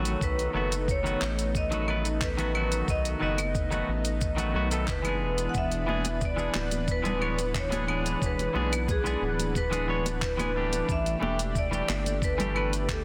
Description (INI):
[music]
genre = sunset chillout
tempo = 90 BPM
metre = 4/4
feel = straight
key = unclear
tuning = A4 = 440 Hz
[part]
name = vibraphone with medium hard mallets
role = melody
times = 0.0-13.0 s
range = G#4 to F#5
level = -35 LUFS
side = equal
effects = vintage 12-bit sampler grit, tape echo
[part]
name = clean electric guitar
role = accompaniment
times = 0.0-12.7 s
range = Eb3 to C#5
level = -35 LUFS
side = equal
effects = tape echo
[part]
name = lush unison pad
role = sustained chords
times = 0.0-13.0 s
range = E3 to F#5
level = -37 LUFS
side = equal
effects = chorus
[part]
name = round analog bass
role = bass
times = 0.0-13.0 s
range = D1 to B1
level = -34 LUFS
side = equal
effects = none
[part]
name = deep house drum kit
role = drums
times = 0.1-13.0 s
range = claves, handclaps, hi-hat, shaker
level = -37 LUFS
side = equal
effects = overdrive
[part]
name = electronic kick drum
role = drums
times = 0.2-13.0 s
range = none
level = -34 LUFS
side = equal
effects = none
[part]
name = congas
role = percussion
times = 5.9-12.5 s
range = none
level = -40 LUFS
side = equal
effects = none
[sound]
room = moderate scoring stage reverb, RT60 1.9 s, digital ambience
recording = dense, heavily limited modern master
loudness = -28 LUFS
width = mono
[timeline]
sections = 0.0-13.0 A section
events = none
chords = 0.2 B7; 5.2 E7; 10.9 A7sus4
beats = | 0.22 0.88 1.55 2.22 | 2.88 3.55 4.22 4.88 | 5.55 6.22 6.88 7.55 | 8.22 8.88 9.55 10.22 | 10.88 11.55 12.22 12.88